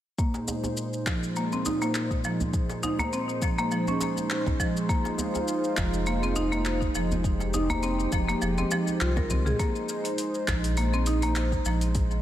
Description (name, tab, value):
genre	organic downtempo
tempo	102 BPM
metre	4/4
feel	swing 55% on 16ths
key	unclear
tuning	A4 = 439 Hz
part	warm analog pad	sustained chords	0.2-12.2 s	Bb2 to C5	-31 LUFS	equal	chorus, sidechain pumping
part	buzzing marimba with hard mallets	arpeggios	0.2-11.8 s	F3 to Bb4	-29 LUFS	equal	low-pass filter, ping-pong delay
part	deep house drum kit	drums	0.2-12.2 s	handclaps, hi-hat, shaker, toms	-35 LUFS	left 1 dB	none
part	electronic kick drum	drums	0.2-12.1 s	none	-28 LUFS	equal	none
part	djembe	percussion	0.3-9.3 s	none	-37 LUFS	right 2 dB	none
part	round analog bass	bass	5.8-12.2 s	F1 to C2	-28 LUFS	equal	sidechain pumping
room	light reverb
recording	none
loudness	-24 LUFS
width	side -12 dB against mid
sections	0.2-9.6 A section; 9.6-12.2 B section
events	filter sweep on marimba 0.2-9.6; drum fill 9.3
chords	0.2 Bb9sus4; 4.9 Fm7; 9.6 Bb9sus4